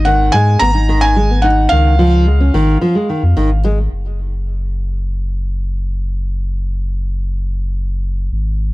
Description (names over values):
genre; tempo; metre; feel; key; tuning
folktronica; 109 BPM; 4/4; straight; unclear; A4 = 440 Hz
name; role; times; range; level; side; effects
felt-muted upright piano; melody; 0.0-3.6 s; E#5 to A#5; -16 LUFS; right 1 dB; tape echo
nylon-string guitar; arpeggios; 0.0-3.8 s; D#3 to D#4; -16 LUFS; equal; tape echo
warm sub bass; bass; 0.0-8.7 s; F#1 to G#2; -15 LUFS; equal; none
room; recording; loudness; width
little or no reverb; dry, close 1970s-style studio recording; -13 LUFS; side -19 dB against mid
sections
0.0-3.9 A section; 3.9-8.7 B section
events
none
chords
0.0 G#m; 1.7 C#add9; 3.9 N.C.